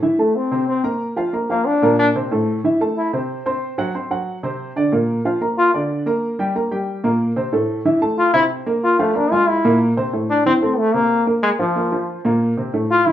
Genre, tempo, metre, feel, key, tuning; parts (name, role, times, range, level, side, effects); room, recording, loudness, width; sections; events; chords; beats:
jazz; 184 BPM; 4/4; straight; A4 = 440 Hz
warm upright piano; accompaniment; 0.0-13.1 s; A2 to C6; -19 LUFS; right 1 dB
bright trombone; melody; 0.2-3.2, 5.6-5.8, 8.2-13.1 s; F3 to F4; -16 LUFS; left 2 dB
wet small room reverb, RT60 0.5 s; heard from further back in the room; -16 LUFS; side -11 dB against mid
0.0-10.1 A section; 10.1-13.1 B section
trombone solo 0.0-10.1
0.0 Am; 1.0 Bbadd9; 2.3 Am; 3.6 D7; 4.9 Bb; 6.2 C5; 7.5 Am; 8.8 Fmadd11; 9.5 Caug7; 10.1 Am; 11.4 Bbsus2
0.03 0.35 0.68 | 1.00 1.33 1.66 1.99 | 2.31 2.64 2.96 3.29 | 3.62 3.94 4.27 4.59 | 4.92 5.25 5.57 5.90 | 6.22 6.55 6.88 7.20 | 7.53 7.85 8.18 8.50 | 8.83 9.15 9.48 9.80 | 10.13 10.46 10.78 11.11 | 11.43 11.76 12.09 12.41 | 12.74 13.06